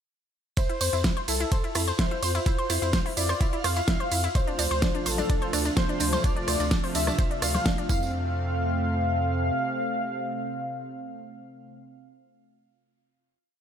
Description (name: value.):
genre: progressive house.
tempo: 127 BPM.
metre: 4/4.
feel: straight.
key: F major.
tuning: A4 = 441 Hz.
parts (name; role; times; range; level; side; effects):
warm velvety synth lead; melody; 0.6-11.8 s; A4 to F5; -31 LUFS; left 2 dB; chorus, sidechain pumping, digital delay.
analog pluck; arpeggios; 0.6-8.3 s; E3 to C5; -32 LUFS; equal; chorus, sidechain pumping, digital delay.
electronic kick drum; drums; 0.6-8.0 s; none; -26 LUFS; equal; none.
pop drum kit; drums; 0.6-7.9 s; hi-hat, ride cymbal, rim click, snare drum; -30 LUFS; right 1 dB; none.
tambourine; percussion; 0.6-8.1 s; none; -35 LUFS; right 8 dB; none.
twinkling granular texture; texture; 1.0-8.1 s; F4; -39 LUFS; equal; built-in reverb, sidechain pumping.
round analog bass; bass; 0.8-9.5 s; A1 to F2; -29 LUFS; equal; sidechain pumping.
warm analog pad; sustained chords; 4.4-11.8 s; C3 to F5; -32 LUFS; right 2 dB; chorus, vintage 12-bit sampler grit, sidechain pumping.
congas; percussion; 5.2-8.0 s; none; -36 LUFS; left 2 dB; sidechain pumping on perc.
room: light reverb.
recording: none.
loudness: -24 LUFS.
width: side -8 dB against mid.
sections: 0.6-8.1 drop; 8.1-11.9 final hit.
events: drop 0.6-8.1.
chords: 0.6 Fmaj7(no3); 4.4 Dm7; 7.9 Fmaj7; 8.1 F.